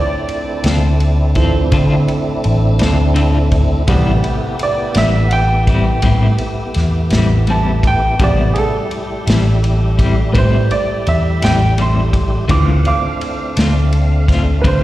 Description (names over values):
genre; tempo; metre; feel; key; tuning
slow blues; 56 BPM (dotted quarters); 12/8; straight; A minor; A4 = 435 Hz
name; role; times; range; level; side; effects
clear upright piano; accompaniment; 0.0-14.8 s; C3 to D6; -20 LUFS; right 3 dB; slapback echo
tonewheel organ; sustained chords; 0.0-14.8 s; C#3 to F#5; -22 LUFS; equal; slow rotary speaker, overdrive, chorus vibrato
vintage drum kit; drums; 0.3-14.8 s; kick drum, ride cymbal, snare drum; -19 LUFS; equal; none
electric guitar at the edge of break-up; accompaniment; 0.6-14.8 s; A2 to A4; -21 LUFS; left 4 dB; tremolo, slapback echo
vintage muted fingered electric bass; bass; 0.6-14.8 s; A1 to D3; -14 LUFS; equal; none
room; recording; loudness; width
light reverb, studio reverb; live gig heard through the venue's PA, recital hall reverb; -12 LUFS; side -15 dB against mid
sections
0.0-14.8 A section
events
upright piano solo 0.0-14.8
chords
0.0 Dm7; 3.9 Am7; 12.5 Dm7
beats
0.65 1.73 2.81 | 3.88 4.96 6.04 7.11 | 8.19 9.26 10.34 11.41 | 12.49 13.56 14.63